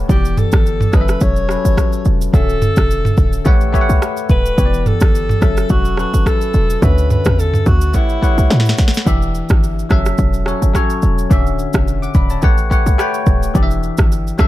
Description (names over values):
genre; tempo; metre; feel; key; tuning
afrobeats; 107 BPM; 4/4; swing 55% on 16ths; E dorian; A4 = 440 Hz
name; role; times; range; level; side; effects
bell-like tine electric piano; accompaniment; 0.0-14.5 s; D3 to D6; -20 LUFS; left 3 dB; wide subtle chorus
short 808-style bass; bass; 0.0-14.5 s; D1 to A2; -15 LUFS; equal; none
breathy alto saxophone; melody; 0.1-8.8 s; E4 to C#5; -21 LUFS; left 1 dB; ping-pong delay
afro-pop drum kit; drums; 0.1-14.5 s; kick drum, rim click, shaker, snare drum, toms; -16 LUFS; equal; none
room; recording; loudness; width
little or no reverb; dark, warm production; -12 LUFS; side -15 dB against mid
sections
0.0-9.1 A section; 9.1-14.5 B section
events
drum fill 8.5-9.1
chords
0.1 Em7; 0.9 F#m7; 2.3 Dmaj9; 3.5 A13; 4.6 Em7; 5.4 F#m7; 6.8 Dmaj9; 7.9 A13; 9.1 Em7; 9.9 F#m7; 11.3 Dmaj9; 12.4 A13; 13.6 Em7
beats
| 0.09 0.65 1.22 1.77 | 2.34 2.90 3.46 4.02 | 4.58 5.14 5.70 6.26 | 6.82 7.38 7.94 8.50 | 9.06 9.63 10.19 10.75 | 11.31 11.87 12.43 12.99 | 13.55 14.11